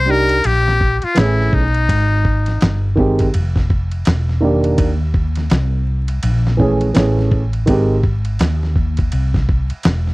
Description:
hip hop, jazz-hop; 83 BPM; 4/4; swing 61% on 16ths; A4 = 438 Hz
trumpet with metal mute; melody; 0.0-3.0 s; Eb4 to C5; -18 LUFS; left 3 dB
woody fretless electric bass; bass; 0.0-10.1 s; E1 to Eb2; -17 LUFS; equal; ensemble chorus
dark concert grand piano; accompaniment; 0.1-8.0 s; Eb3 to G#4; -16 LUFS; right 2 dB
dusty soul sampler-style drum kit; drums; 0.3-10.1 s; hi-hat, kick drum, ride cymbal, snare drum; -18 LUFS; equal; overdrive
little or no reverb; dry, close 1970s-style studio recording, vinyl crackle; -14 LUFS; side -22 dB against mid
0.0-10.1 A section
0.0 Ebmaj7; 1.2 Amaj7; 1.9 Abmaj7; 4.1 Em7b5; 4.8 Eb5; 7.0 Amaj7; 7.7 Abmaj7
0.45 1.17 | 1.89 2.61 3.34 4.06 | 4.78 5.50 6.23 6.95 | 7.67 8.40 9.12 9.84

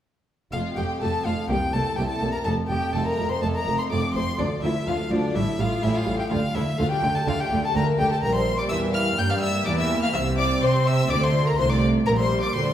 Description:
classical, baroque-style concerto movement with solo episodes; 125 BPM; 4/4; straight; F major; A4 = 439 Hz
clear violin; melody; 0.5-12.7 s; D5 to G6; -29 LUFS; left 2 dB
rich chamber violin section; melody; 0.5-12.7 s; D5 to G6; -32 LUFS; left 4 dB
rich chamber violin section; second line; 0.5-12.7 s; D4 to G5; -28 LUFS; left 2 dB
harpsichord; accompaniment; 0.5-12.7 s; C2 to G4; -32 LUFS; equal
warm studio viola section; accompaniment; 0.5-12.7 s; F3 to C4; -28 LUFS; right 1 dB
dark chamber cello section; bass; 0.5-12.7 s; C2 to C4; -29 LUFS; right 2 dB
rich chamber double bass section; bass; 0.5-12.7 s; F1 to C3; -28 LUFS; right 2 dB
wet recital hall reverb, RT60 1.5 s; heard from further back in the room; -21 LUFS; side -10 dB against mid
0.5-12.7 A section
0.5 F; 1.5 C7; 2.5 F; 4.4 Dm; 5.4 A7; 6.3 Dm; 8.2 Gm/Bb; 10.1 C5; 11.1 Dm; 12.1 Gm/Bb
| 0.53 1.01 1.50 1.98 | 2.46 2.94 3.43 3.92 | 4.39 4.88 5.36 5.83 | 6.31 6.79 7.27 7.75 | 8.23 8.71 9.18 9.66 | 10.14 10.62 11.10 11.58 | 12.06 12.54

